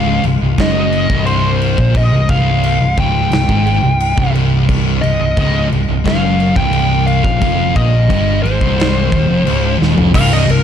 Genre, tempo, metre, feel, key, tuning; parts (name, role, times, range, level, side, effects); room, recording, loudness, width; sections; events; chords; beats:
stoner and doom metal; 88 BPM; 4/4; straight; A4 = 441 Hz
fuzz lead guitar; melody; 0.0-10.6 s; Bb4 to G5; -18 LUFS; left 1 dB; wah, distortion, ping-pong delay
thick fuzz guitar; riff; 0.0-10.6 s; C2 to Bb2; -17 LUFS; left 8 dB; distortion
thick fuzz guitar; riff; 0.0-10.6 s; C2 to Bb2; -18 LUFS; right 9 dB; distortion
fingered electric bass; bass; 0.0-10.6 s; C1 to Bb1; -18 LUFS; equal; overdrive
big rock drum kit; drums; 0.2-10.6 s; crash cymbal, kick drum, snare drum, toms; -19 LUFS; equal
little or no reverb; dark, warm production; -11 LUFS; side -8 dB against mid
0.0-10.1 A section
drum fill 9.8-10.1
0.0 Cm
0.59 1.27 | 1.96 2.64 3.32 4.00 | 4.68 5.37 6.05 6.73 | 7.41 8.10 8.78 9.46 | 10.14